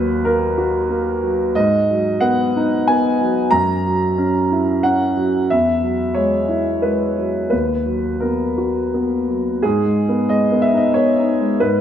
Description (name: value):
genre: neoclassical minimalist piano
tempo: 91 BPM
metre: 3/4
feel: rubato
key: G# minor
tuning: A4 = 440 Hz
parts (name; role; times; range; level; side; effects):
- warm concert grand piano; solo; 0.0-11.8 s; D#2 to A#5; -15 LUFS; equal; none
room: moderate scoring stage reverb, RT60 1.8 s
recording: none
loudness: -15 LUFS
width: side -9 dB against mid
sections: 0.0-9.6 A section; 9.6-11.8 B section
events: none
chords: 0.0 Bmaj7/D#; 1.5 G#m7; 3.5 F#7; 5.5 Eadd9; 7.5 Bmaj7/D#; 9.6 G#m